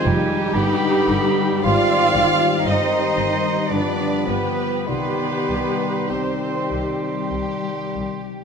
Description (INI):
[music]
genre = classical, slow romantic movement for symphony orchestra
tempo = 42-63 BPM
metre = 3/4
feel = rubato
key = C minor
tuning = A4 = 439 Hz
[part]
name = rich chamber violin section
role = melody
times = 0.0-8.4 s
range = G4 to F5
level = -30 LUFS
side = left 2 dB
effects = none
[part]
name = clear clarinet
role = second line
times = 0.0-8.2 s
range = Eb4 to G4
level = -31 LUFS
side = equal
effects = none
[part]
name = dark cor anglais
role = second line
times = 0.0-7.3 s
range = G3 to F4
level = -29 LUFS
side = right 3 dB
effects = none
[part]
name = mellow silver concert flute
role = second line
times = 0.0-7.3 s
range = Eb4 to D5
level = -32 LUFS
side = left 1 dB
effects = none
[part]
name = rich chamber violin section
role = second line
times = 0.0-7.3 s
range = Eb4 to D5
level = -29 LUFS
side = left 4 dB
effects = none
[part]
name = rich chamber viola section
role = accompaniment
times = 0.0-7.3 s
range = G4 to F5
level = -24 LUFS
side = right 3 dB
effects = none
[part]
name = warm bassoon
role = accompaniment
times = 0.0-8.2 s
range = G3 to C4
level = -30 LUFS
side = right 2 dB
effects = none
[part]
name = mellow French horn section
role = sustained chords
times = 0.0-8.2 s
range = D3 to G4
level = -28 LUFS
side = left 3 dB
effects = none
[part]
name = concert harp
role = arpeggios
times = 0.0-8.4 s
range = F2 to D5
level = -27 LUFS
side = left 11 dB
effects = none
[part]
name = clear trumpet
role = stabs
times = 0.0-8.2 s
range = Ab5 to C6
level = -30 LUFS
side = right 4 dB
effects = none
[part]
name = rich chamber cello section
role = bass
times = 0.0-7.3 s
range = G3 to F4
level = -27 LUFS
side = right 4 dB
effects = none
[part]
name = rich chamber double bass section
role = bass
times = 0.1-8.0 s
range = F1 to C2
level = -27 LUFS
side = right 2 dB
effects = none
[sound]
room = moderate concert hall reverb, RT60 2.2 s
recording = none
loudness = -18 LUFS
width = side -6 dB against mid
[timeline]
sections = 0.0-8.4 A section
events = none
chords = 0.0 Ddim/F; 0.5 G; 1.6 Abmaj7; 2.7 Cm/G; 3.7 G7; 4.9 Cm